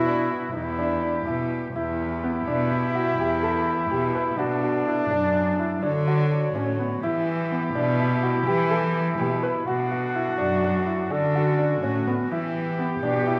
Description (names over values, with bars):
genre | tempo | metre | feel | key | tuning
contemporary instrumental, chamber music in an uneven meter | 250 BPM (eighths) | 11/8 | straight | E dorian | A4 = 442 Hz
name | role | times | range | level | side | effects
warm flugelhorn | second line | 0.0-13.4 s | D4 to A4 | -30 LUFS | equal | none
warm woodwind section | sustained chords | 0.0-13.4 s | D3 to C#5 | -35 LUFS | equal | none
warm cello | bass | 0.0-13.4 s | E2 to E3 | -29 LUFS | equal | none
warm baby grand piano | arpeggios | 0.1-13.4 s | B3 to B4 | -30 LUFS | equal | none
room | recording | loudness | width
wet recital hall reverb, RT60 1.6 s | recorded in a church or concert hall | -24 LUFS | mono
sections
0.0-1.7 A section; 1.7-13.4 B section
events
none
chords
0.0 Esus2; 0.5 Em; 4.4 Bm7; 5.8 Dmaj7; 7.0 Em; 9.7 Bm7; 11.1 Dmaj7; 12.3 Em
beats
0.06 0.30 0.55 0.79 1.03 1.27 1.51 | 1.75 1.99 2.23 2.47 2.71 2.95 3.19 3.43 3.67 3.91 4.15 | 4.39 4.63 4.87 5.11 5.35 5.59 5.83 6.08 6.32 6.55 6.79 | 7.04 7.28 7.51 7.75 8.00 8.23 8.47 8.71 8.95 9.19 9.43 | 9.67 9.91 10.15 10.39 10.63 10.87 11.11 11.35 11.59 11.83 12.06 | 12.30 12.54 12.78 13.02 13.26